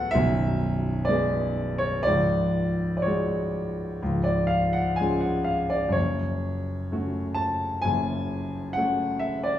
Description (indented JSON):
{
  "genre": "classical, romantic nocturne for solo piano",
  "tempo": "60-67 BPM",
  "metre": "4/4",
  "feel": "rubato",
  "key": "F# minor",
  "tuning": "A4 = 440 Hz",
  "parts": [
    { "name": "warm grand piano", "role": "solo", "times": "0.0-9.6 s", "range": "B0 to A5", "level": "-23 LUFS", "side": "equal", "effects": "none" }
  ],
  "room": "wet recital hall reverb, RT60 1.5 s",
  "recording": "small room ambience",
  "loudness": "-23 LUFS",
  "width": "side -11 dB against mid",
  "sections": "0.0-9.6 A section",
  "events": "none",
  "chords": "0.1 Bm69; 2.1 C#sus4; 4.0 C#; 5.9 F#m"
}